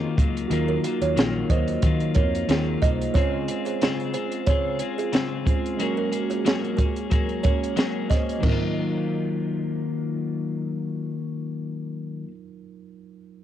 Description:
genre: indie pop, bedroom pop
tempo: 91 BPM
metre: 4/4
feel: swing 55% on 16ths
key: Eb dorian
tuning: A4 = 440 Hz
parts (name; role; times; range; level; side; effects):
- clean electric guitar; accompaniment; 0.0-12.3 s; Db3 to Ab4; -28 LUFS; left 7 dB; wide subtle chorus, vibrato effect, cassette tape
- mellow tine electric piano; accompaniment; 0.0-13.4 s; Gb3 to Db5; -32 LUFS; right 8 dB; cassette tape
- vintage muted fingered electric bass; bass; 0.0-3.1 s; Bb1 to Eb3; -28 LUFS; equal; none
- compact cocktail drum kit; drums; 0.2-8.6 s; crash cymbal, hi-hat, kick drum, snare drum, toms; -23 LUFS; equal; none
- kalimba; second line; 0.7-10.4 s; F4 to Eb5; -30 LUFS; right 7 dB; analog chorus, cassette tape, tape echo
room: light reverb, small room ambience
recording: home recording on cassette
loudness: -22 LUFS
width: side -11 dB against mid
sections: 0.0-8.4 A section; 8.4-11.1 B section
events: none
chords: 0.0 Ebmadd9; 3.1 Dbmaj7; 5.8 Gbadd9; 8.4 Ebmadd9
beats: | 0.50 1.16 1.82 2.49 | 3.15 3.81 4.47 5.13 | 5.79 6.45 7.11 7.77 | 8.43 9.10 9.76 10.42

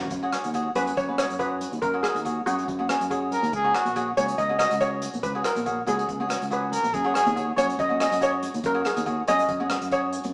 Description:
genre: calypso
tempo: 141 BPM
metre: 4/4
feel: swing 54% on 16ths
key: F# major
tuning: A4 = 439 Hz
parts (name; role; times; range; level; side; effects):
- cavaquinho; accompaniment; 0.0-10.2 s; F#4 to D#5; -31 LUFS; equal; none
- overdriven fingered electric bass; bass; 0.0-10.3 s; A#1 to F#2; -34 LUFS; equal; none
- unplugged drum kit; drums; 0.0-10.3 s; hi-hat, kick drum, rim click, toms; -36 LUFS; equal; none
- congas; percussion; 0.3-10.3 s; none; -39 LUFS; equal; none
- steel pan; melody; 0.8-10.1 s; F#4 to D#5; -28 LUFS; equal; none
- warm trumpet; second line; 3.3-4.1, 6.7-7.5 s; F#4 to A#4; -27 LUFS; equal; none
room: wet stone room reverb, RT60 1.2 s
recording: band playing live in one room, small speaker sound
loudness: -25 LUFS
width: mono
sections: 0.1-10.3 A section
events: steel pan solo 0.1-10.3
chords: 0.1 F#sus2; 3.5 C#sus4; 6.9 F#sus2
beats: | 0.11 0.54 0.97 1.40 | 1.82 2.25 2.68 3.10 | 3.53 3.96 4.38 4.81 | 5.24 5.66 6.09 6.51 | 6.94 7.37 7.79 8.22 | 8.64 9.07 9.49 9.92

